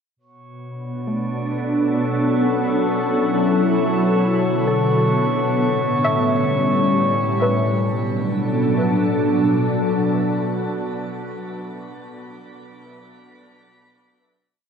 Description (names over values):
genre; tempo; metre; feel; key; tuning
ambient; 66 BPM; 4/4; straight; B minor; A4 = 439 Hz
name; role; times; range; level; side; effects
glassy FM pad; sustained chords; 0.7-11.2 s; A2 to A4; -19 LUFS; equal; ensemble chorus, built-in reverb, shimmer reverb
organ-like drone; drone; 0.8-10.7 s; B3 to F#4; -32 LUFS; right 1 dB; ensemble chorus, built-in reverb
glass harmonica; texture; 0.2-7.5 s; C#5 to C#6; -26 LUFS; left 1 dB; shimmer reverb
soft round pluck; arpeggios; 1.1-10.7 s; A3 to E5; -28 LUFS; equal; analog chorus, diffuse ambient delay, shimmer reverb
room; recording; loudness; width
wet plate reverb, RT60 3.8 s; dreamy mix soaked in reverb; -17 LUFS; side -7 dB against mid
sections
0.2-7.4 A section; 7.4-11.1 final chord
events
fade-in on synth pluck 0.2-7.4; fade-in on glass harmonica 0.2-7.4; fade-out on synth drone 0.2-7.4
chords
0.2 Bm7; 2.0 F#m7; 3.8 Bm7; 5.6 A7; 7.4 Bm7